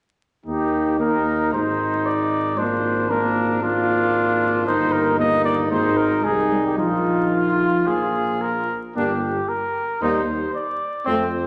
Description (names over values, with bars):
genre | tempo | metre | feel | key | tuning
classical, brass quintet | 114 BPM | 4/4 | rubato | unclear | A4 = 440 Hz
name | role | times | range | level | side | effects
warm trumpet | melody | 0.5-11.5 s | F4 to Eb5 | -25 LUFS | equal | none
clear trumpet | second line | 0.5-11.2 s | C4 to Bb4 | -27 LUFS | equal | none
mellow French horn | accompaniment | 0.5-11.3 s | F3 to Bb3 | -28 LUFS | equal | none
warm trombone | accompaniment | 0.5-11.3 s | Eb3 to G3 | -29 LUFS | equal | none
warm bass trombone | bass | 0.5-11.5 s | G1 to F2 | -30 LUFS | equal | none
room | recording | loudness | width
wet recital hall reverb, RT60 1.6 s | vinyl crackle, nothing above 10.9 kHz | -21 LUFS | mono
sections
0.5-11.5 A section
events
none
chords
0.5 Eb; 1.5 Ab; 2.6 Bb7/Ab; 4.7 Eb/G; 5.7 Ab; 6.8 Bbsus4; 7.9 Bb5; 9.0 Gm; 10.0 Eb